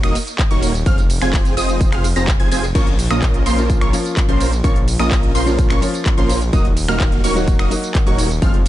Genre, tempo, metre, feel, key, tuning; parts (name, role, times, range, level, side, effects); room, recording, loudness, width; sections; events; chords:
EDM, festival progressive house; 127 BPM; 4/4; straight; Bb minor; A4 = 441 Hz
wide unison pluck; arpeggios; 0.0-8.6 s; C6 to Bb6; -27 LUFS; equal; sidechain pumping, digital delay
dense compressed supersaw; riff; 0.0-8.6 s; Bb3 to Bb5; -22 LUFS; right 1 dB; sidechain pumping, digital delay
detuned saw bass; bass; 0.0-8.7 s; Eb1 to Bb1; -21 LUFS; equal; sidechain pumping
big-room dance drum kit; drums; 0.0-8.7 s; crash cymbal, finger snaps, handclaps, hi-hat, ride cymbal, tambourine; -25 LUFS; right 1 dB
electronic kick drum; drums; 0.4-8.5 s; -16 LUFS; equal
clear grand piano; accompaniment; 2.7-8.6 s; F3 to Gb4; -23 LUFS; left 1 dB; sidechain pumping, digital delay
little or no reverb; nothing above 10.5 kHz; -14 LUFS; side -14 dB against mid
0.0-8.7 A section
0.0 Ebm; 0.9 Fm; 2.8 Bbm; 6.5 Ebm